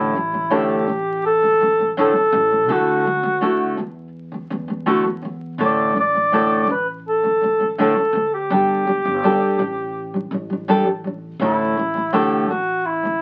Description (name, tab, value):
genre	pop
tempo	83 BPM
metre	4/4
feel	straight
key	unclear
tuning	A4 = 440 Hz
part	dark cor anglais	melody	0.0-13.2 s	E4 to D5	-21 LUFS	equal	none
part	nylon-string guitar	accompaniment	0.0-13.2 s	A2 to A4	-22 LUFS	equal	none
part	upright bass	bass	0.0-13.2 s	G1 to E2	-35 LUFS	equal	none
room	moderate studio ambience, RT60 0.5 s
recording	very old 78 rpm record, vinyl crackle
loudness	-19 LUFS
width	mono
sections	0.0-13.2 A section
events	none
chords	0.0 Asus4; 2.7 Dadd9; 5.6 Asus4; 8.5 Gsus2; 11.4 Asus4